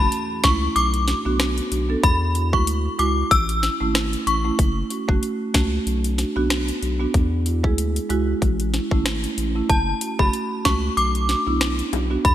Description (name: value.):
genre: dancehall.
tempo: 94 BPM.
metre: 4/4.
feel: swing 56% on 16ths.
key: unclear.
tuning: A4 = 442 Hz.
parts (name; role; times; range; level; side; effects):
synth chime; melody; 0.0-4.4, 9.7-12.3 s; A5 to E6; -22 LUFS; left 1 dB; ensemble chorus.
marimba with medium mallets; accompaniment; 0.0-12.2 s; G#3 to A4; -25 LUFS; right 3 dB; sidechain pumping.
saturated sub bass; bass; 0.0-12.3 s; F#1 to E2; -24 LUFS; equal; none.
island pop drum kit; drums; 0.1-12.3 s; finger snaps, hi-hat, kick drum, rim click, snare drum; -23 LUFS; left 1 dB; none.
bongos; percussion; 10.2-12.1 s; none; -34 LUFS; left 14 dB; none.
room: light reverb.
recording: bright 1980s-style digital production, faint mains hum.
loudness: -19 LUFS.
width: side -12 dB against mid.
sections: 0.0-12.3 A section.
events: none.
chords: 0.0 F#m; 0.8 Bm; 2.0 Eadd9; 3.3 A; 4.6 F#m; 5.9 Bm; 7.1 Eadd9; 8.4 A; 9.7 F#m; 11.0 Bm.